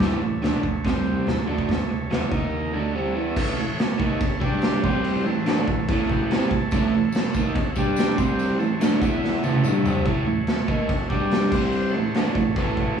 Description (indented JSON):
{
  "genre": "garage rock duo or trio",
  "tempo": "143 BPM",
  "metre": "4/4",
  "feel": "straight",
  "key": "A mixolydian",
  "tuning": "A4 = 440 Hz",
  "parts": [
    { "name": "combo organ", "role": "sustained chords", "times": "0.0-13.0 s", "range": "C4 to A5", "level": "-31 LUFS", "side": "equal", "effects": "spring reverb" },
    { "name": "crunchy overdriven guitar", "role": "riff", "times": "0.0-13.0 s", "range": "G2 to G4", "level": "-23 LUFS", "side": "right 1 dB", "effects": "none" },
    { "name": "raw garage drum kit", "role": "drums", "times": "0.0-12.9 s", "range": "crash cymbal, kick drum, snare drum, toms", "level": "-24 LUFS", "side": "right 1 dB", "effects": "none" },
    { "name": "tambourine", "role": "percussion", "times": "6.7-9.9 s", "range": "none", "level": "-44 LUFS", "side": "left 3 dB", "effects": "none" }
  ],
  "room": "wet large studio reverb, RT60 1.0 s",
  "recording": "band playing live in one room, cassette tape, studio reverb",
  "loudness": "-20 LUFS",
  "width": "side -7 dB against mid",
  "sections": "0.0-3.4 A section; 3.4-10.1 B section; 10.1-13.0 C section",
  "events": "transistor combo organ fill 5.9-6.7, 9.2-10.1; drum fill 9.2-10.1",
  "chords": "0.0 A; 0.9 C5; 1.3 A; 2.3 D#5; 2.7 A; 4.4 G5; 4.8 C5; 5.3 A; 7.8 G5; 8.2 C5; 8.6 A; 9.0 E5; 9.4 A; 11.1 G5; 11.5 C5; 11.9 A",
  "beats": "| 0.01 0.43 0.86 1.28 | 1.70 2.12 2.54 2.96 | 3.38 3.79 4.21 4.63 | 5.04 5.46 5.88 6.29 | 6.71 7.13 7.55 7.96 | 8.38 8.80 9.22 9.64 | 10.05 10.47 10.89 11.31 | 11.73 12.15 12.57 12.98"
}